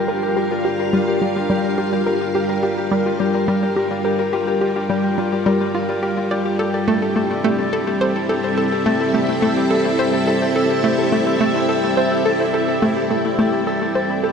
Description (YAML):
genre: ambient, sequencer-driven space music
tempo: 106 BPM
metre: 4/4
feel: straight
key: G dorian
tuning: A4 = 441 Hz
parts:
  - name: string machine, full ensemble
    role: sustained chords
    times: 0.0-14.3 s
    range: G3 to F5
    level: -20 LUFS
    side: right 1 dB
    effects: ensemble chorus, shimmer reverb
  - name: Celtic harp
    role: arpeggios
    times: 0.0-14.3 s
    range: E4 to F5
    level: -22 LUFS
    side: left 4 dB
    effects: auto-pan, ping-pong delay, shimmer reverb
  - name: bubbling stepped-filter texture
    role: texture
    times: 0.0-14.3 s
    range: D5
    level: -40 LUFS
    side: right 5 dB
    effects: none
  - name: hollow square pluck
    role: riff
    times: 0.1-14.3 s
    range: G3 to D5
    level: -22 LUFS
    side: equal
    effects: chorus, ping-pong delay, shimmer reverb
room: wet plate reverb, RT60 2.5 s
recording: dreamy mix soaked in reverb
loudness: -16 LUFS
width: side -6 dB against mid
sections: 0.0-14.3 A section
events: none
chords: 0.0 Gm7; 6.6 Am7